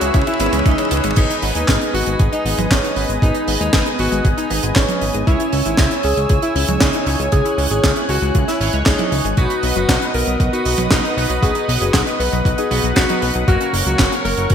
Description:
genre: italo disco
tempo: 117 BPM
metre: 4/4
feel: straight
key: G# minor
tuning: A4 = 441 Hz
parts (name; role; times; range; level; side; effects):
- warm alto saxophone; melody; 0.0-14.5 s; C#4 to B4; -22 LUFS; left 1 dB; digital delay
- warm analog pad; sustained chords; 0.0-14.5 s; G#4 to F#6; -24 LUFS; left 1 dB; chorus
- analog pluck; arpeggios; 0.0-14.5 s; F#3 to G#4; -26 LUFS; left 4 dB; chorus, phaser, ping-pong delay
- chorused polysynth; stabs; 0.0-14.5 s; E3 to C#5; -24 LUFS; right 3 dB; phaser, cassette tape, ping-pong delay
- fat analog bass; bass; 0.0-14.5 s; F#1 to D#2; -22 LUFS; equal; none
- tight funk drum kit; drums; 0.0-14.5 s; crash cymbal, handclaps, hi-hat, snare drum, toms; -21 LUFS; right 2 dB; high-pass filter on hats, small room ambience, high-pass filter on toms, high-pass filter on cymbals, high-pass filter on snare, high-pass filter on room, gated reverb
- electronic kick drum; drums; 0.1-14.5 s; none; -17 LUFS; equal; small room ambience
room: moderate lush hall reverb, RT60 1.8 s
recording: bright 1980s-style digital production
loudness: -14 LUFS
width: side -8 dB against mid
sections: 0.0-1.2 A section; 1.2-14.5 B section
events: drum fill 0.0-1.2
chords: 0.0 C#m7; 1.2 G#m; 5.3 C#m; 9.4 B; 13.5 F#

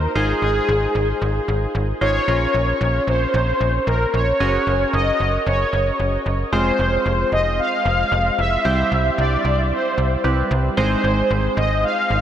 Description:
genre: synth-pop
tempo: 113 BPM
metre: 4/4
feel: straight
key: unclear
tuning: A4 = 439 Hz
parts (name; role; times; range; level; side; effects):
- analog synth brass; melody; 0.0-12.2 s; Ab4 to F5; -20 LUFS; equal; chorus, analog delay
- warm analog keys; accompaniment; 0.0-12.2 s; G3 to C5; -24 LUFS; right 1 dB; chorus
- slap-like FM bass; bass; 0.0-12.2 s; F1 to C2; -21 LUFS; equal; none
room: wet huge ambient reverb, RT60 7.4 s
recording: dreamy mix soaked in reverb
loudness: -17 LUFS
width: side -10 dB against mid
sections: 0.0-6.5 A section; 6.5-12.2 B section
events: none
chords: 0.2 Ab6; 2.3 Bbmadd9; 4.4 Gbadd9; 6.5 Fm; 8.7 C; 10.8 Ab

